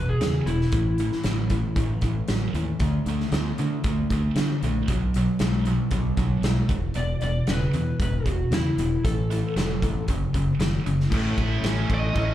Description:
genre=classic rock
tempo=116 BPM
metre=4/4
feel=straight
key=unclear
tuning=A4 = 439 Hz
part: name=electric slide guitar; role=second line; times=0.0-2.0, 7.0-10.1 s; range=E4 to D5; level=-30 LUFS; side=left 2 dB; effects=slapback echo
part: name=overdriven electric guitar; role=riff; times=0.0-12.3 s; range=E2 to B3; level=-28 LUFS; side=left 4 dB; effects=phaser
part: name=tight distorted guitar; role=riff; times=0.0-12.3 s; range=E2 to E4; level=-32 LUFS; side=right 9 dB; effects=distortion, slapback echo
part: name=fingered electric bass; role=bass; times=0.0-12.3 s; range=E1 to D3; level=-25 LUFS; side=equal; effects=none
part: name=huge arena drum kit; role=drums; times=0.2-12.3 s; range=crash cymbal, hi-hat, kick drum, ride cymbal, snare drum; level=-28 LUFS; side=equal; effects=none
part: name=tonewheel organ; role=sustained chords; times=11.1-12.3 s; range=E3 to A4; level=-35 LUFS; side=right 2 dB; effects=slow rotary speaker, chorus vibrato
part: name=bluesy overdriven lead guitar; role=melody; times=11.9-12.3 s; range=D#5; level=-28 LUFS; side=right 2 dB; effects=distortion, slapback echo
room=little or no reverb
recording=live gig heard through the venue's PA, club ambience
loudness=-22 LUFS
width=side -12 dB against mid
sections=0.0-11.1 A section; 11.1-12.3 B section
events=none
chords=0.0 E5; 0.7 A5; 2.8 D5; 4.9 B5; 6.7 E5; 9.0 A5; 10.1 F#5; 11.1 A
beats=0.21 | 0.73 1.25 1.77 2.29 | 2.81 3.33 3.85 4.36 | 4.88 5.40 5.92 6.44 | 6.96 7.48 8.00 8.52 | 9.04 9.56 10.08 10.60 | 11.12 11.64 12.16

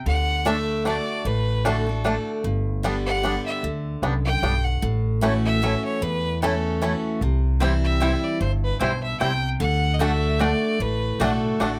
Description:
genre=bluegrass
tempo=151 BPM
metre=3/4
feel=swing 56% on 8ths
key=D mixolydian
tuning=A4 = 440 Hz
part: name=picked steel-string acoustic guitar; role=accompaniment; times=0.0-11.8 s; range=E2 to G4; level=-28 LUFS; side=equal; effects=none
part: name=rich fiddle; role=melody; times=0.1-11.8 s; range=A4 to G5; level=-30 LUFS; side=equal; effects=none
part: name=upright bass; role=bass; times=0.1-11.8 s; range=G1 to E2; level=-27 LUFS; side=equal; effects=none
part: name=bluegrass banjo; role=arpeggios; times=0.5-11.7 s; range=G3 to E4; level=-28 LUFS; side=equal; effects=none
part: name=mandolin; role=stabs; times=7.6-11.7 s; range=A3 to G5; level=-31 LUFS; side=equal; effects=none
room=light reverb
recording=close, detailed microphones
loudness=-23 LUFS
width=mono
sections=0.0-11.8 A section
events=none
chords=0.1 D; 2.4 G; 4.8 A6; 7.2 C; 9.6 D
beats=| 0.05 0.45 0.85 | 1.25 1.65 2.04 | 2.44 2.84 3.24 | 3.63 4.03 4.43 | 4.83 5.22 5.62 | 6.02 6.42 6.82 | 7.21 7.61 8.01 | 8.41 8.81 9.21 | 9.60 10.00 10.40 | 10.80 11.20 11.60

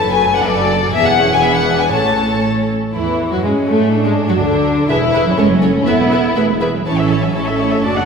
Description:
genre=quick classical-period movement for string orchestra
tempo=123 BPM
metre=2/4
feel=straight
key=A major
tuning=A4 = 440 Hz
part: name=warm chamber violin section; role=melody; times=0.0-8.1 s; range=G#3 to A5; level=-18 LUFS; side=left 5 dB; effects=none
part: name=warm chamber violin section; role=second line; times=0.0-8.1 s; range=C#4 to C#5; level=-19 LUFS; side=left 2 dB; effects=none
part: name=warm chamber viola section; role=accompaniment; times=0.0-8.1 s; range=D3 to F#5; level=-20 LUFS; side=equal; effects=none
part: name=dark chamber cello section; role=bass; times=0.0-8.1 s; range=E2 to B3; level=-18 LUFS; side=right 3 dB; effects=none
part: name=warm chamber double bass section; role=bass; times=0.0-8.1 s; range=E1 to A2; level=-22 LUFS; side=right 3 dB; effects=none
room=wet scoring stage reverb, RT60 1.8 s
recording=recorded in a church or concert hall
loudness=-12 LUFS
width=side -5 dB against mid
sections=0.0-2.9 A section; 2.9-8.1 B section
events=none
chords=0.0 D/F#; 0.9 E; 1.4 E7; 1.9 A; 2.9 A/E; 3.9 D; 4.9 E; 5.4 F#m; 5.9 Esus4; 6.4 E; 6.9 A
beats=0.46 | 0.94 1.43 | 1.93 2.44 | 2.95 3.44 | 3.92 4.41 | 4.89 5.37 | 5.86 6.36 | 6.86 7.35 | 7.83

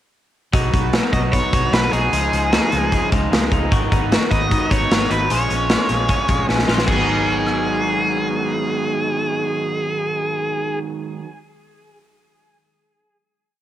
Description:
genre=jangly indie pop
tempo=152 BPM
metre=4/4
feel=straight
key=G# dorian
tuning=A4 = 440 Hz
part: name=raw garage guitar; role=accompaniment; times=0.5-11.4 s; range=G#2 to F#4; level=-25 LUFS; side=right 8 dB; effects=overdrive
part: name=twelve-string electric guitar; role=arpeggios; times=0.5-11.4 s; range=D#3 to F#4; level=-25 LUFS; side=left 8 dB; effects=vibrato effect
part: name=vintage muted fingered electric bass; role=bass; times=0.5-11.2 s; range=G#1 to C#2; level=-24 LUFS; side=equal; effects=none
part: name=big rock drum kit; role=drums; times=0.5-7.6 s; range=crash cymbal, hi-hat, kick drum, rim click, snare drum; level=-19 LUFS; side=equal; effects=cassette tape
part: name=high-gain lead guitar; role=melody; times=1.1-10.8 s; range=G#4 to D#5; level=-22 LUFS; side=equal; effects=distortion, cassette tape
room=moderate studio reverb, RT60 0.6 s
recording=home recording on cassette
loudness=-16 LUFS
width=side -12 dB against mid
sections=0.5-6.9 pre-chorus; 6.9-10.0 final chord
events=drum fill 6.5-6.9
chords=0.5 B; 2.1 C#add9; 3.7 G#m7; 5.3 A#m7; 6.9 G#m7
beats=| 0.53 0.93 1.33 1.73 | 2.13 2.53 2.92 3.32 | 3.72 4.11 4.51 4.91 | 5.30 5.69 6.09 6.48 | 6.88 7.27 7.66 8.06 | 8.45 8.84 9.24 9.63

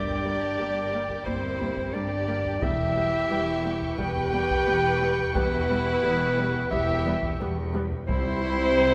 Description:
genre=cinematic, suspense film score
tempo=88 BPM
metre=4/4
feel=straight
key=unclear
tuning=A4 = 440 Hz
part: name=muted chamber violin section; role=melody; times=0.0-8.9 s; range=E4 to B4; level=-36 LUFS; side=equal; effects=none
part: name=muted chamber violin section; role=second line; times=0.0-8.9 s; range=B4 to G5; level=-37 LUFS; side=equal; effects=none
part: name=warm clarinet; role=second line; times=0.0-8.9 s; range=B4 to G5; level=-30 LUFS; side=equal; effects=none
part: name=ethereal airy pad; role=sustained chords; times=0.0-8.9 s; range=G4 to G5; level=-42 LUFS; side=equal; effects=none
part: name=warm French horn section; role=sustained chords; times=0.0-8.9 s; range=B3 to G4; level=-33 LUFS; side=equal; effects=none
part: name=muted chamber double bass section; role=bass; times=0.0-8.9 s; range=E1 to C2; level=-36 LUFS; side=equal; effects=none
part: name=muted studio cello section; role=bass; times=0.0-8.9 s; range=C2 to G2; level=-36 LUFS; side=equal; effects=none
part: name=muted chamber violin section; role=texture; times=0.0-8.9 s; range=G5 to C#7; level=-44 LUFS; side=equal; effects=none
part: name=taiko ensemble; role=drums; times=0.1-8.7 s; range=none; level=-36 LUFS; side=equal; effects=none
part: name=muted chamber viola section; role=accompaniment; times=0.2-8.9 s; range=G3 to E4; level=-37 LUFS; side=equal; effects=none
room=wet scoring stage reverb, RT60 1.6 s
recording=none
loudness=-26 LUFS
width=mono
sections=0.0-8.9 A section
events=none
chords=0.0 Gm; 2.6 Em; 8.1 C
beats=0.58 1.26 1.94 | 2.63 3.31 3.99 4.67 | 5.35 6.04 6.72 7.40 | 8.08 8.76

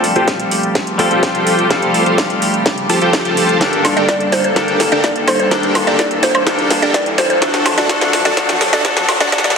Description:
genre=EDM, festival progressive house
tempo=126 BPM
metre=4/4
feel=straight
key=G minor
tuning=A4 = 440 Hz
part: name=twangy electric guitar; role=accompaniment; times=0.0-9.6 s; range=F#2 to A4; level=-19 LUFS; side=left 2 dB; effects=vintage 12-bit sampler grit, sidechain pumping, ping-pong delay
part: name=rich chamber string section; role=sustained chords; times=0.0-9.6 s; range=F3 to A4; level=-22 LUFS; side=left 2 dB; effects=sidechain pumping, low-pass filter
part: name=dense compressed supersaw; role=riff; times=0.0-9.5 s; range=D4 to A5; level=-17 LUFS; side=equal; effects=sidechain pumping, low-pass filter, ping-pong delay
part: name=house drum kit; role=drums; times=0.0-9.6 s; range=hi-hat, snare drum, woodblock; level=-18 LUFS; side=equal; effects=high-pass filter on snare, studio reverb, high-pass filter on hats, high-pass filter on perc
part: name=riser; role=sound effects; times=0.0-9.6 s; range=none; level=-25 LUFS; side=right 2 dB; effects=none
part: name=electronic kick drum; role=drums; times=0.3-9.4 s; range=none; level=-22 LUFS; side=equal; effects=none
part: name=mallet-like synth pluck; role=melody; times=4.0-9.5 s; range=C5 to D5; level=-18 LUFS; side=right 1 dB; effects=chorus, ping-pong delay
room=wet lush hall reverb, RT60 1.5 s, digital ambience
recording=heavily compressed radio sound, high-pass filter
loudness=-12 LUFS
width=side -6 dB against mid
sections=0.0-9.6 A section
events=build-up 0.0-9.6; drum fill 0.0-9.6; riser 0.0-9.6; filter sweep on string section 0.0-9.6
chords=0.0 Fadd9; 3.6 Gmadd9; 7.4 D/F#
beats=0.28 0.75 1.23 | 1.71 2.18 2.66 3.13 | 3.61 4.09 4.56 5.04 | 5.51 5.99 6.47 6.94 | 7.42 7.90 8.37 8.85 | 9.32

